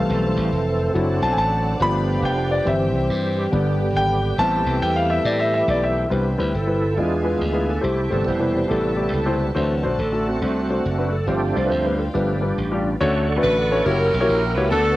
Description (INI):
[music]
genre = gospel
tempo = 139 BPM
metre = 4/4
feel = swing 65% on 8ths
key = C major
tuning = A4 = 440 Hz
[part]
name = warm grand piano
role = accompaniment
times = 0.0-15.0 s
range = G2 to B5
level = -22 LUFS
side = left 2 dB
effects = cassette tape
[part]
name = bright tonewheel organ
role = sustained chords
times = 0.0-15.0 s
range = C3 to E6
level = -24 LUFS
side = right 2 dB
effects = fast rotary speaker, chorus vibrato, cassette tape
[part]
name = warm studio string section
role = sustained chords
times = 0.0-13.0 s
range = G4 to A5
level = -32 LUFS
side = left 1 dB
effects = cassette tape
[part]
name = slap bass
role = bass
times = 0.0-15.0 s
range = E1 to A2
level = -24 LUFS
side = equal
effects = none
[part]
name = bright saxophone section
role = melody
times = 13.4-15.0 s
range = C#4 to B4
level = -20 LUFS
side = equal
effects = cassette tape
[sound]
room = light reverb, studio reverb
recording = home recording on cassette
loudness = -18 LUFS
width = side -16 dB against mid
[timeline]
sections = 0.0-6.1 A section; 6.1-13.0 B section; 13.0-15.0 C section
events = grand piano solo 0.0-6.1; tonewheel organ solo 6.1-13.0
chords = 0.0 Fmaj7; 0.9 D7/F#; 1.8 G7; 2.7 C/G; 3.5 G; 4.4 Am7; 6.1 Cmaj7; 7.0 E7b9; 7.8 Am7; 9.6 D7; 11.3 G7sus4; 12.1 G7; 13.0 Dmaj7; 13.9 F#7b9